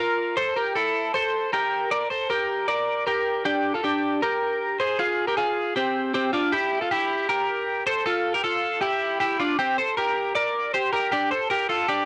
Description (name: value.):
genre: indie pop.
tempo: 156 BPM.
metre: 4/4.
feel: straight.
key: C mixolydian.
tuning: A4 = 442 Hz.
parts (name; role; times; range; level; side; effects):
twelve-string electric guitar; solo; 0.0-12.1 s; C4 to D5; -24 LUFS; equal; cassette tape.
room: light reverb.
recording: home recording on cassette, nothing above 11.0 kHz.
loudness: -24 LUFS.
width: mono.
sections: 0.0-3.5 A section; 3.5-9.6 B section; 9.6-12.1 C section.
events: none.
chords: 0.4 C6; 1.7 Gm; 3.5 Bb6; 4.8 Fmadd9; 6.5 Edim; 7.9 Fmaj7; 9.6 C5; 11.1 Gm7.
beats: | 0.37 0.76 1.14 1.53 | 1.91 2.30 2.68 3.07 | 3.45 3.84 4.22 4.61 | 4.99 5.37 5.76 6.14 | 6.53 6.91 7.29 7.67 | 8.06 8.44 8.82 9.21 | 9.59 9.97 10.35 10.73 | 11.12 11.50 11.88.